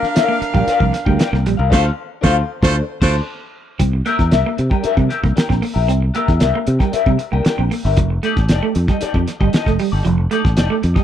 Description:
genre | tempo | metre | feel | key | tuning
funk | 115 BPM | 4/4 | straight | unclear | A4 = 440 Hz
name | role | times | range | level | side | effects
warm horn section | second line | 0.0-3.2 s | A3 to F5 | -21 LUFS | right 3 dB | none
clean electric guitar | accompaniment | 0.0-11.0 s | D4 to G5 | -21 LUFS | left 7 dB | wah, spring reverb
fingered electric bass | bass | 0.0-10.9 s | F1 to C3 | -17 LUFS | equal | none
cloth-damped thuddy drum kit | drums | 0.0-11.0 s | crash cymbal, hi-hat, kick drum, snare drum | -18 LUFS | equal | none
semi-hollow electric guitar | riff | 0.3-11.0 s | F3 to C4 | -22 LUFS | right 7 dB | none
room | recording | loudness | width
little or no reverb | dry, close 1970s-style studio recording | -14 LUFS | side -10 dB against mid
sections
0.0-3.8 A section; 3.8-11.0 B section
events
band accent 1.7-3.8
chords
0.0 Gm7; 1.7 Dm7; 3.8 C9; 8.0 F13

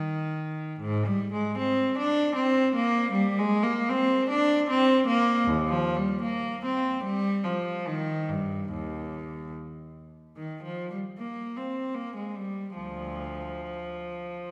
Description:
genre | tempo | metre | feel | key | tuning
classical, baroque-style suite movement for unaccompanied cello | 71-79 BPM | 3/4 | rubato | Eb major | A4 = 441 Hz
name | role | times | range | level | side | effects
rich cello | solo | 0.0-14.5 s | D2 to D4 | -28 LUFS | equal | none
room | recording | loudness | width
wet concert hall reverb, RT60 2.3 s | heard from further back in the room | -28 LUFS | mono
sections
0.0-10.4 A section; 10.4-14.5 A section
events
none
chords
none

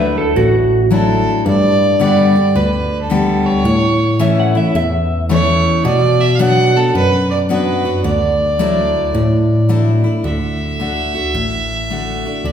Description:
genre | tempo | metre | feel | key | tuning
honky-tonk and classic country | 109 BPM | 4/4 | swing 65% on 8ths | D major | A4 = 442 Hz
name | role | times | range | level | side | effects
electric guitar through a small old amp | second line | 0.0-0.8, 4.2-5.2 s | F#4 to F#5 | -18 LUFS | right 2 dB | tape echo
picked steel-string acoustic guitar | accompaniment | 0.0-12.5 s | E2 to G4 | -16 LUFS | left 2 dB | none
barky tine electric piano | bass | 0.0-12.5 s | A1 to B2 | -18 LUFS | equal | medium stereo tremolo
clear fiddle | melody | 0.9-12.5 s | A4 to F#5 | -18 LUFS | right 2 dB | none
room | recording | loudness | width
wet recital hall reverb, RT60 1.7 s | heard from further back in the room | -12 LUFS | side -8 dB against mid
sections
0.0-10.2 A section; 10.2-12.5 B section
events
none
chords
0.0 Dadd9; 1.5 G; 3.7 A; 5.8 Bm; 8.0 Dadd9; 10.2 D

